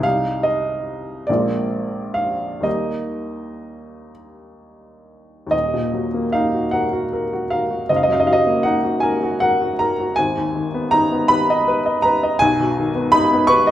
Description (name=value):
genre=classical, romantic nocturne for solo piano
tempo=39-58 BPM (dotted quarters)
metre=12/8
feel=rubato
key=Eb major, Eb minor from 5.5 s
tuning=A4 = 440 Hz
part: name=clear upright piano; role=solo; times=0.0-13.7 s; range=Eb1 to Db6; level=-16 LUFS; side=equal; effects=none
room=wet recital hall reverb, RT60 1.4 s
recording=none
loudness=-17 LUFS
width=side -12 dB against mid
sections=0.0-5.5 A section; 5.5-13.7 B section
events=none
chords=0.0 Cm; 1.3 Bb7; 2.6 Eb; 5.5 Ebm; 7.9 Ebm/Gb; 10.2 Abm; 12.4 Abm/Cb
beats=| 0.04 1.28 2.65 4.11 | 5.53 6.73 7.89 9.04 | 10.17 11.31 12.41 13.49